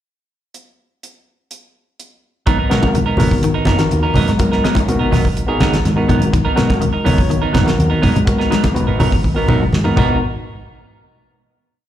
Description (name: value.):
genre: afrobeat.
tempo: 124 BPM.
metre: 4/4.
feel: straight.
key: G# minor.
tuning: A4 = 440 Hz.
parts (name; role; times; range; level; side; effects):
damped 70s drum kit; drums; 0.5-10.1 s; crash cymbal, hi-hat, kick drum, snare drum, toms; -20 LUFS; equal; none.
clean electric guitar; arpeggios; 2.5-10.1 s; G#2 to G#3; -23 LUFS; left 7 dB; wide subtle chorus.
clean electric guitar; stabs; 2.5-10.2 s; F#3 to A#4; -20 LUFS; right 5 dB; warbly pitch drift, slapback echo.
hollow-body short-scale fingered electric bass; bass; 2.5-10.2 s; F#1 to G#2; -18 LUFS; equal; none.
overdriven tine electric piano; accompaniment; 2.7-10.2 s; B3 to C#5; -22 LUFS; left 3 dB; slapback echo.
congas; percussion; 2.8-10.1 s; none; -19 LUFS; equal; none.
room: light reverb.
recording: live gig heard through the venue's PA, club reverb.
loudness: -13 LUFS.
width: side -11 dB against mid.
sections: 0.5-2.5 pickup bar; 2.5-10.2 groove; 10.2-11.9 final hit.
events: drum fill 9.2-10.2.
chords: 0.5 N.C.; 2.5 G#m9; 10.2 N.C..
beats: | 0.54 1.02 1.50 1.98 | 2.47 2.95 3.43 3.92 | 4.40 4.88 5.37 5.85 | 6.34 6.82 7.31 7.79 | 8.28 8.76 9.24 9.73.